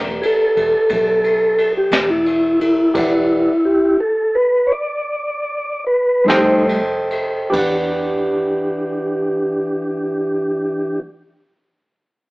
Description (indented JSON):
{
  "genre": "slow blues",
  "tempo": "46-59 BPM (dotted quarters)",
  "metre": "12/8",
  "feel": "straight",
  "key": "E minor",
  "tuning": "A4 = 440 Hz",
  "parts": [
    { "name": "barky tine electric piano", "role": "accompaniment", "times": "0.0-11.1 s", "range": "G4 to G5", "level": "-22 LUFS", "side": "right 1 dB", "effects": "none" },
    { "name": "vintage muted fingered electric bass", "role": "bass", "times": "0.0-11.0 s", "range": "E1 to E2", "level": "-34 LUFS", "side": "equal", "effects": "none" },
    { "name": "mellow tonewheel organ", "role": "sustained chords", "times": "0.2-11.0 s", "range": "E3 to D5", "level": "-16 LUFS", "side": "equal", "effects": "slow rotary speaker" },
    { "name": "jazz brush drum kit", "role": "drums", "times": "0.2-7.7 s", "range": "crash cymbal, kick drum, ride cymbal, snare drum", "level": "-23 LUFS", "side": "equal", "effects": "none" }
  ],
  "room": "light reverb",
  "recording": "rough rehearsal-room recording, AM radio sound",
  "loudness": "-15 LUFS",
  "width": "side -22 dB against mid",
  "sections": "0.0-7.5 A section; 7.5-12.3 B section",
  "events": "tonewheel organ solo 0.0-7.5; slowing down 1.6-7.5",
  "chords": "0.0 Em7; 6.3 F7; 7.5 Em7"
}